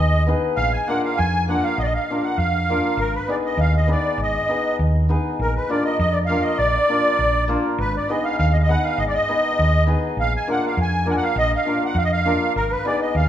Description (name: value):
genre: balkan folk, Balkan wedding band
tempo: 100 BPM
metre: 2/4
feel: straight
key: unclear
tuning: A4 = 439 Hz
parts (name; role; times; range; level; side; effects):
- musette accordion; melody; 0.0-13.3 s; Bb4 to Ab5; -21 LUFS; right 1 dB; none
- hollow-body short-scale fingered electric bass; bass; 0.0-13.3 s; Ab1 to F2; -22 LUFS; equal; none
- hammered dulcimer; accompaniment; 0.3-13.1 s; Bb3 to Cb5; -24 LUFS; left 2 dB; none
room: wet recital hall reverb, RT60 1.5 s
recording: minimal, uncompressed stereo recording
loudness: -18 LUFS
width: side -11 dB against mid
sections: 0.0-5.4 A section; 5.4-13.3 A section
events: none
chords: 0.0 Abm; 0.6 Bb; 3.0 Abm; 5.4 Bb; 7.8 Abm; 10.2 Bb; 12.6 Abm